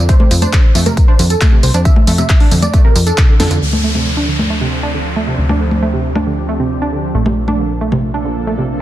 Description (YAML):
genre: uplifting trance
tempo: 136 BPM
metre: 4/4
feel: straight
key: D minor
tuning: A4 = 439 Hz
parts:
  - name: supersaw stab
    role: melody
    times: 0.0-3.6 s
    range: A4 to E5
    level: -22 LUFS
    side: right 2 dB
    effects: sidechain pumping, low-pass filter, tape echo
  - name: plucky analog bass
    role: bass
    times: 0.0-8.8 s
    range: Bb1 to F2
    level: -16 LUFS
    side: equal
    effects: sidechain pumping
  - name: wide unison pluck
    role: arpeggios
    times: 0.1-8.6 s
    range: C3 to D4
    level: -19 LUFS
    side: right 3 dB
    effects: sidechain pumping, tape echo
  - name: big-room dance drum kit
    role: drums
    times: 0.1-8.0 s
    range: congas, handclaps, hi-hat, snare drum, tambourine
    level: -18 LUFS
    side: left 1 dB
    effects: low-pass filter on hats, low-pass filter on perc, low-pass filter on snare
  - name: electronic kick drum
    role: drums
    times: 0.1-3.3 s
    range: none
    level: -9 LUFS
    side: equal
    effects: none
  - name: downlifter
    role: sound effects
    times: 3.6-7.1 s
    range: none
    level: -23 LUFS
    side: left 1 dB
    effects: none
  - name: lush unison pad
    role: sustained chords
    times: 3.7-8.8 s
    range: F3 to A4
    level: -22 LUFS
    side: right 2 dB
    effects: chorus, phaser, sidechain pumping
room: light reverb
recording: dense, heavily limited modern master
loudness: -11 LUFS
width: side -13 dB against mid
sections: 0.0-3.6 A section; 3.6-8.8 B section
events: drum fill 3.4; band accent 3.4; filter sweep on drum 3.6-8.8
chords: 0.1 F; 3.6 Dm7; 7.1 Bbmaj7